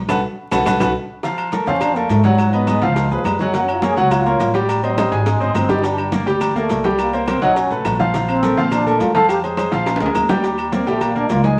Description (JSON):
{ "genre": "Afro-Cuban jazz", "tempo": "209 BPM", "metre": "4/4", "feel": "straight", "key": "unclear", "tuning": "A4 = 440 Hz", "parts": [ { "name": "upright bass", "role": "bass", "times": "0.0-11.6 s", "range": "G1 to Bb2", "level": "-24 LUFS", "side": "equal", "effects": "none" }, { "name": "clear grand piano", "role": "accompaniment", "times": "0.1-11.6 s", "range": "F3 to Ab5", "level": "-22 LUFS", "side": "equal", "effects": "none" }, { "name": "claves", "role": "percussion", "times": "0.1-11.2 s", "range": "none", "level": "-36 LUFS", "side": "equal", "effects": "none" }, { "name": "congas", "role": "percussion", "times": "0.1-11.6 s", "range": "none", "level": "-29 LUFS", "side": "equal", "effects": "none" }, { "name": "cowbell and bongos", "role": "percussion", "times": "0.1-11.6 s", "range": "none", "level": "-31 LUFS", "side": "equal", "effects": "none" }, { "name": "maracas", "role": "percussion", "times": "0.1-11.6 s", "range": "none", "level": "-44 LUFS", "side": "equal", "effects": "none" }, { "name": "timbales and agogo bells", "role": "percussion", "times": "0.1-11.4 s", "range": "none", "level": "-28 LUFS", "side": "equal", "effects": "none" }, { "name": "trombone with plunger mute", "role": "second line", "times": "1.7-11.6 s", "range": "Eb3 to A4", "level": "-23 LUFS", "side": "equal", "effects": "none" } ], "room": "wet studio reverb, RT60 0.9 s", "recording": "vinyl crackle", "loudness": "-18 LUFS", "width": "mono", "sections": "0.0-1.2 A section; 1.2-10.4 A section; 10.4-11.6 A section", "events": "grand piano solo 0.0-1.2; drum fill 0.1-1.2, 5.0-5.8, 9.9-10.4; band accent 0.1-1.2; trombone solo 1.2-11.6", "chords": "0.1 B5; 1.2 Bb5; 2.4 Db9; 3.5 Gbmaj7; 4.7 Am7b5; 5.3 Ab; 5.8 Gm; 7.0 C5; 7.6 B5; 8.1 Bbmaj7; 9.3 Fm; 9.9 Bb7; 10.4 Ebmaj7" }